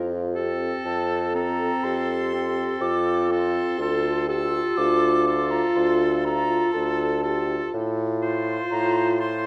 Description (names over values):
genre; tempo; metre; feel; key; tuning
classical, slow romantic movement for wind quintet; 61 BPM; 4/4; rubato; F major; A4 = 440 Hz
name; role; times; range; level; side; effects
mellow French horn; accompaniment; 0.0-9.5 s; F4 to A4; -29 LUFS; equal; none
mellow bassoon; bass; 0.0-9.5 s; D2 to A2; -28 LUFS; equal; none
bright oboe; second line; 0.3-9.5 s; A4 to C5; -33 LUFS; equal; none
clear clarinet; accompaniment; 0.3-9.5 s; C4 to F4; -31 LUFS; equal; none
silver concert flute; melody; 0.8-9.5 s; A5 to E6; -31 LUFS; equal; none
room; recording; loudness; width
wet recital hall reverb, RT60 1.5 s; none; -23 LUFS; mono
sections
0.0-9.5 A section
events
none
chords
0.0 F; 3.8 Dm; 7.7 F/A